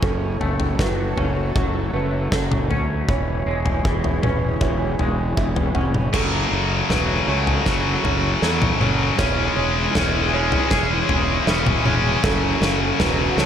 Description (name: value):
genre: post-rock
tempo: 79 BPM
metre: 4/4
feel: straight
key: F# minor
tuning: A4 = 440 Hz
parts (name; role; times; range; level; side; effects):
- lush unison pad; sustained chords; 0.0-13.5 s; E3 to C#5; -31 LUFS; right 2 dB; chorus, phaser
- felt-muted upright piano; arpeggios; 0.0-13.5 s; A4 to F#5; -31 LUFS; right 8 dB; tape echo
- twangy electric guitar; arpeggios; 0.0-13.5 s; F#2 to G#4; -29 LUFS; left 2 dB; lush chorus, tape echo
- fuzz fingered electric bass; bass; 0.0-13.5 s; E1 to E2; -24 LUFS; equal; overdrive
- big rock drum kit; drums; 0.0-13.5 s; crash cymbal, kick drum, snare drum, toms; -23 LUFS; equal; none
- tight distorted guitar; riff; 6.1-13.5 s; F#2 to C#4; -21 LUFS; left 2 dB; distortion
room: light reverb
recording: none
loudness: -18 LUFS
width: side -9 dB against mid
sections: 0.0-6.1 A section; 6.1-13.5 B section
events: build-up 6.1-13.5; drum fill 6.1-13.5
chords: 0.0 F#m; 3.1 C#m/E; 6.1 F#m; 9.2 C#m/E; 12.2 F#m